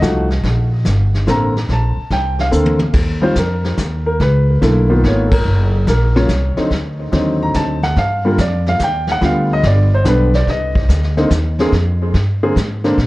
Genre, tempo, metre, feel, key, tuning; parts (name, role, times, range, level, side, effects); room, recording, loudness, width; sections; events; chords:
jazz piano trio; 144 BPM; 3/4; swing 67% on 8ths; Eb major; A4 = 443 Hz
clear baby grand piano; melody; 0.0-13.0 s; Db3 to Bb5; -17 LUFS; equal; analog delay
upright bass; bass; 0.0-13.1 s; Gb1 to Bb2; -16 LUFS; equal
vintage brush drum kit; drums; 0.0-13.1 s; brushed snare drum, crash cymbal, hi-hat, kick drum, snare drum, toms; -20 LUFS; equal; vintage 12-bit sampler grit
light reverb, small room ambience; dark, warm production; -13 LUFS; side -19 dB against mid
0.0-2.9 A section; 2.9-13.0 B section
drum fill 2.5-2.9; band accent 5.2
0.4 Bbmaj9; 2.9 Ebsus2; 4.2 Db13; 5.5 Gb; 6.7 D7b9; 8.0 G7(no3); 9.2 G7; 10.5 Cmadd9; 11.7 Bb7 (rootless)